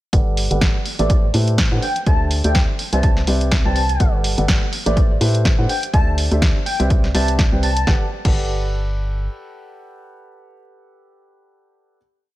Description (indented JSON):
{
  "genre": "piano house",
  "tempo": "124 BPM",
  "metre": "4/4",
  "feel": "swing 56% on 16ths",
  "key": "G major",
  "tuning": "A4 = 440 Hz",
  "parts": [
    { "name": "warm concert grand piano", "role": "riff", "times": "0.1-12.0 s", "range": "G3 to G5", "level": "-25 LUFS", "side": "equal", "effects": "sidechain pumping, low-pass filter, tape echo" },
    { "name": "organ-like FM bass", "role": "bass", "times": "0.1-9.3 s", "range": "G1 to A2", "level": "-20 LUFS", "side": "equal", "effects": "sidechain pumping" },
    { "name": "electronic kick drum", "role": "drums", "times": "0.1-8.4 s", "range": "none", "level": "-17 LUFS", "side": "equal", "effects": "studio reverb" },
    { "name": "punchy analog drum machine", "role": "drums", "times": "0.1-8.4 s", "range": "crash cymbal, hi-hat, snare drum", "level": "-24 LUFS", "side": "equal", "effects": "studio reverb" },
    { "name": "airy dreamy lead", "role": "melody", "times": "1.0-7.9 s", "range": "D5 to A5", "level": "-25 LUFS", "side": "equal", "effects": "chorus, tape echo" }
  ],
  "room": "digital ambience",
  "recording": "none",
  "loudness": "-15 LUFS",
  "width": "side -16 dB against mid",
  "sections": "0.1-7.9 groove; 7.9-11.7 final chord",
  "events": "none",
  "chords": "0.1 Gmaj9; 0.9 Am9; 1.8 D9sus4; 3.0 Cmaj9; 4.0 Gmaj9; 4.7 Am9; 5.7 D9sus4; 6.9 Cmaj9; 7.9 Gmaj9"
}